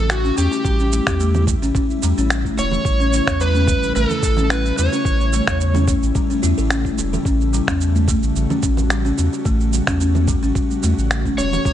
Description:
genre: organic downtempo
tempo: 109 BPM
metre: 4/4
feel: swing 54% on 16ths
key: A mixolydian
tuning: A4 = 440 Hz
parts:
  - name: overdriven slide guitar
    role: melody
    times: 0.0-5.8, 11.4-11.7 s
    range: F#4 to C#5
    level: -23 LUFS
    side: right 2 dB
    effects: tape echo
  - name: ethereal airy pad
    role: sustained chords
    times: 0.0-11.7 s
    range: C#3 to F#4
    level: -27 LUFS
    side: equal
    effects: ensemble chorus, built-in reverb, vintage 12-bit sampler grit, sidechain pumping
  - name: warm sub bass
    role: bass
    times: 0.0-11.7 s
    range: E1 to E2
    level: -19 LUFS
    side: equal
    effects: sidechain pumping
  - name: electronic finger snaps and cabasa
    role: drums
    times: 0.1-11.7 s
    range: none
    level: -24 LUFS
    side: right 2 dB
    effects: none
  - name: buzzing kalimba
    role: arpeggios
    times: 0.2-11.7 s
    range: G3 to A4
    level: -22 LUFS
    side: left 4 dB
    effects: tape echo
  - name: bongos and congas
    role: percussion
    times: 0.2-11.6 s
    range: none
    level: -29 LUFS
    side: right 4 dB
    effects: none
  - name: electronic kick drum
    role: drums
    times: 0.6-11.7 s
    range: none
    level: -22 LUFS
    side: equal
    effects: none
room: digital ambience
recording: nothing above 10.5 kHz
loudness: -16 LUFS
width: side -11 dB against mid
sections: 0.0-11.7 A section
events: none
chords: 0.0 A7

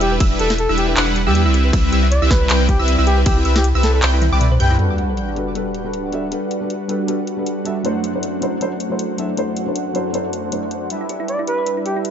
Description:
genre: future bass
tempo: 157 BPM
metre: 4/4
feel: swing 56% on 16ths, half-time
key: G major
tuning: A4 = 439 Hz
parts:
  - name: trumpet with bucket mute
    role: melody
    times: 0.0-4.0, 11.3-12.0 s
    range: G4 to D5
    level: -23 LUFS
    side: equal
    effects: sidechain pumping, ping-pong delay
  - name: thumb-piano-like synth pluck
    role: arpeggios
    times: 0.0-4.8, 11.0-12.0 s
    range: E4 to G5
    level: -28 LUFS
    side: right 4 dB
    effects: chorus, sidechain pumping, ping-pong delay
  - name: wide unison pluck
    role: arpeggios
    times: 0.0-4.8 s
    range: D6 to G6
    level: -27 LUFS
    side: equal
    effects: vintage 12-bit sampler grit, sidechain pumping, ping-pong delay
  - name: soft supersaw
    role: riff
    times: 0.0-12.1 s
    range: F#2 to G5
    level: -21 LUFS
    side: equal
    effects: phaser, sidechain pumping, low-pass filter
  - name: saturated sub bass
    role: bass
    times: 0.0-4.8 s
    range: E1 to E2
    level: -17 LUFS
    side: equal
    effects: sidechain pumping
  - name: trap drum kit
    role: drums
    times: 0.0-12.1 s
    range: handclaps, hi-hat, ride cymbal, snare drum, toms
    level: -23 LUFS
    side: equal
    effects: low-pass filter on hats, small room ambience, low-pass filter on snare, low-pass filter on cymbals, low-pass filter on toms
  - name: electronic kick drum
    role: drums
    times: 0.2-3.3 s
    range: none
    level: -16 LUFS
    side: equal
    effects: small room ambience
  - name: felt-muted upright piano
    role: accompaniment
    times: 4.8-10.6 s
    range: F#3 to E5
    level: -24 LUFS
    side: left 1 dB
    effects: sidechain pumping, ping-pong delay
  - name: sub drop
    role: sound effects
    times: 4.8-6.3 s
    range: none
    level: -25 LUFS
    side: equal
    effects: none
room: light reverb, digital ambience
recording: nothing above 7.7 kHz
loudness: -16 LUFS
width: side -9 dB against mid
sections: 0.0-4.8 A section; 4.8-12.1 B section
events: drop 0.0-4.8; drum fill 4.2-4.8; impact 4.8-6.3; filter sweep on drum 4.8-12.1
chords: 0.0 Em7; 1.5 Cmaj7; 4.8 Gmaj7; 7.8 D7/F#; 10.9 Em7

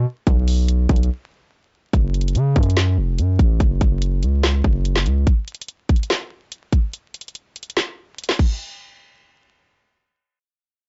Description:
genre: hip hop, trap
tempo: 144 BPM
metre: 4/4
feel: half-time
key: F# harmonic minor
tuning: A4 = 440 Hz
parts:
  - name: distorted 808-style bass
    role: bass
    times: 0.0-5.3 s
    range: E#1 to C#3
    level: -20 LUFS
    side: equal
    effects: distortion, tube saturation
  - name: trap drum kit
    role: drums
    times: 0.3-8.5 s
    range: crash cymbal, handclaps, hi-hat, kick drum, snare drum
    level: -21 LUFS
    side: equal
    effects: none
room: little or no reverb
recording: blown-out, overdriven recording, vinyl crackle, overdrive, nothing above 7.8 kHz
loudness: -20 LUFS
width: mono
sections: 0.0-1.9 A section; 1.9-8.6 B section; 8.6-10.9 C section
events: break 1.1-1.9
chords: none

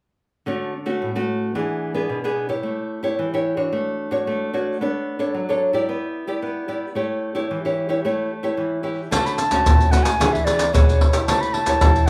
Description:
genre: samba and choro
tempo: 111 BPM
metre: 4/4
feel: straight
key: D major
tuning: A4 = 439 Hz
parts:
  - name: nylon-string guitar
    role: accompaniment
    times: 0.5-12.1 s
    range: A2 to D5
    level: -25 LUFS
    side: equal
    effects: none
  - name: wooden flute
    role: melody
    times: 9.1-12.1 s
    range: C#5 to B5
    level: -23 LUFS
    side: equal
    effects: none
  - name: maracas, surdo and pandeiro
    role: percussion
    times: 9.1-12.1 s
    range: none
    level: -19 LUFS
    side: equal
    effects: none
room: moderate large studio reverb, RT60 1.1 s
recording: band playing live in one room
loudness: -22 LUFS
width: mono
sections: 0.5-9.1 A section; 9.1-12.1 B section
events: none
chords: 0.5 Dmaj7; 1.6 E7; 2.6 A7; 3.7 Dmaj7/A; 4.8 Bm9; 5.9 Em7/B; 7.0 A7; 9.1 Dmaj7; 10.2 E7; 11.3 A7

